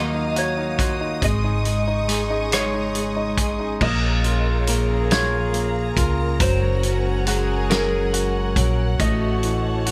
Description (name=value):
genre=six-eight pop ballad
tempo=46 BPM (dotted quarters)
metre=6/8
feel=straight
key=unclear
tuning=A4 = 440 Hz
part: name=clean lap steel guitar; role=melody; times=0.0-9.9 s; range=Bb4 to Eb5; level=-30 LUFS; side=equal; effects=none
part: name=clear baby grand piano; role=accompaniment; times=0.0-9.9 s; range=Eb3 to Gb4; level=-29 LUFS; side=equal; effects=none
part: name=warm studio string section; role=sustained chords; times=0.0-9.9 s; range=Gb3 to Eb6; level=-33 LUFS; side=equal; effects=none
part: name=clean electric guitar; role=arpeggios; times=0.0-9.9 s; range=Ab2 to C#5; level=-33 LUFS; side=equal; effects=ensemble chorus
part: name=upright bass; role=bass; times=0.0-9.9 s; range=Gb1 to Eb2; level=-26 LUFS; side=equal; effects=none
part: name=loose indie drum kit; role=drums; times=0.4-9.9 s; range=crash cymbal, hi-hat, kick drum, rim click, snare drum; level=-26 LUFS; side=equal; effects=none
part: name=warm French horn section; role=second line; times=3.8-9.9 s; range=Eb4 to Ab4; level=-30 LUFS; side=equal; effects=none
room=little or no reverb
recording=none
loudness=-21 LUFS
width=mono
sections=0.0-3.8 A section; 3.8-9.9 B section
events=none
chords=0.0 Ebmadd9; 1.2 Absus4; 3.8 Bbm; 6.4 Gbadd9; 9.0 A6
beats=| 1.22 2.51 | 3.81 5.11 | 6.40 7.70 | 9.00